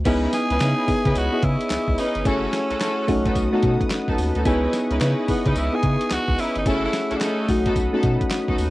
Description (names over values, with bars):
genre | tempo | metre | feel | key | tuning
R&B, new jack swing | 109 BPM | 4/4 | swing 63% on 16ths | C# minor | A4 = 438 Hz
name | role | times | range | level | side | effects
round analog bass | bass | 0.0-8.7 s | F#1 to C#3 | -24 LUFS | equal | none
soft electric-piano-like synth keys | accompaniment | 0.1-8.7 s | A3 to D#5 | -23 LUFS | left 1 dB | chorus, cassette tape
brassy analog pad | sustained chords | 0.1-8.7 s | A3 to E6 | -34 LUFS | equal | chorus, cassette tape
rich studio string section | stabs | 0.1-8.6 s | B3 to B4 | -28 LUFS | right 1 dB | cassette tape
dusty soul sampler-style drum kit | drums | 0.1-8.7 s | crash cymbal, handclaps, hi-hat, kick drum, snare drum, tambourine | -26 LUFS | equal | cassette tape
raspy tenor saxophone | melody | 0.3-7.8 s | B3 to G#4 | -26 LUFS | equal | cassette tape
room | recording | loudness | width
moderate small room reverb, RT60 0.5 s | home recording on cassette | -19 LUFS | side -18 dB against mid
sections
0.1-8.7 A section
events
none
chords
0.1 C#m9; 2.3 F#m7; 3.1 B7; 4.5 C#m9; 6.7 F#m7; 7.5 B7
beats
| 0.05 0.60 1.15 1.71 | 2.25 2.81 3.36 3.91 | 4.46 5.01 5.56 6.11 | 6.66 7.21 7.76 8.31